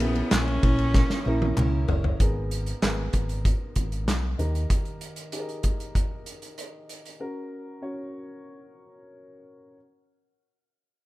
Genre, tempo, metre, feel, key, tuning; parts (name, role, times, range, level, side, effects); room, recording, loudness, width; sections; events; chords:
piano-driven pop; 96 BPM; 4/4; straight; G# minor; A4 = 440 Hz
rich cello; melody; 0.0-1.6 s; B3 to C#4; -29 LUFS; left 1 dB
dark upright piano; accompaniment; 0.0-9.8 s; G#2 to C#5; -36 LUFS; left 1 dB
picked steel-string acoustic guitar; riff; 0.0-2.2 s; A#3 to A#4; -32 LUFS; right 4 dB
fingered electric bass; bass; 0.0-4.6 s; F#1 to D#2; -27 LUFS; equal
loose indie drum kit; drums; 0.0-7.2 s; handclaps, hi-hat, kick drum, ride cymbal, snare drum, toms; -26 LUFS; equal
group handclap; percussion; 0.3-1.7 s; -41 LUFS; left 3 dB
small room ambience; rough home demo mix; -23 LUFS; side -18 dB against mid
0.0-2.2 A section; 2.2-11.1 B section
drum fill 0.9-2.2; slowing down 7.2-11.1
0.0 A#dim; 2.2 G#madd9; 4.4 D#; 7.2 F#; 9.8 N.C.